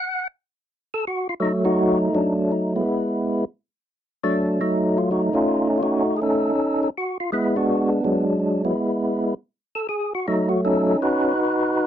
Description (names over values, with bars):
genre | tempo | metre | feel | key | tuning
jazz | 163 BPM | 4/4 | swing 65% on 8ths | unclear | A4 = 439 Hz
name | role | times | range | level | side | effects
percussive tonewheel organ | solo | 0.0-11.9 s | F#3 to F#5 | -19 LUFS | equal | slow rotary speaker
room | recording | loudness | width
light reverb | dry, close 1970s-style studio recording | -20 LUFS | side -10 dB against mid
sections
0.0-1.4 A section; 1.4-11.9 B section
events
tonewheel organ solo 0.0-1.4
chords
0.0 N.C.; 1.4 B7; 2.9 Eadd9; 4.3 F#m6; 7.3 E9; 10.2 B9